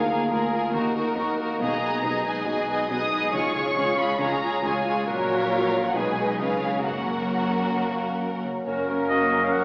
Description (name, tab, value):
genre	classical, dramatic, fast romantic movement for symphony orchestra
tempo	138 BPM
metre	4/4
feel	rubato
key	F# major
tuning	A4 = 440 Hz
part	warm symphonic violin section	melody	0.0-9.6 s	A#4 to D#6	-29 LUFS	equal	none
part	rich studio violin section	second line	0.0-9.6 s	F#4 to D#5	-27 LUFS	equal	none
part	rich symphonic viola section	accompaniment	0.0-9.6 s	F#3 to F#4	-29 LUFS	equal	none
part	concert harp	arpeggios	0.0-9.6 s	F#2 to C#5	-30 LUFS	equal	none
part	rich symphonic cello section	bass	0.0-9.6 s	D2 to C#3	-32 LUFS	equal	none
part	rich symphonic double bass section	bass	0.0-9.6 s	F#1 to D#2	-38 LUFS	equal	none
part	clear clarinet	second line	8.7-9.6 s	A#4	-29 LUFS	equal	none
part	mellow bassoon	accompaniment	8.7-9.6 s	C#4	-31 LUFS	equal	none
part	warm French horn section	sustained chords	8.7-9.6 s	C#4 to A#4	-28 LUFS	equal	none
part	clear oboe	second line	9.1-9.6 s	D#5 to F#5	-22 LUFS	equal	none
room	wet concert hall reverb, RT60 1.7 s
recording	heard from further back in the room, AM radio sound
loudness	-22 LUFS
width	side -33 dB against mid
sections	0.0-8.7 A section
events	none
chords	0.0 A#7/D; 0.7 D#m; 1.6 G#m/B; 3.3 C#; 5.1 F#/A#; 5.9 G#m/B; 6.4 C#7; 6.8 F#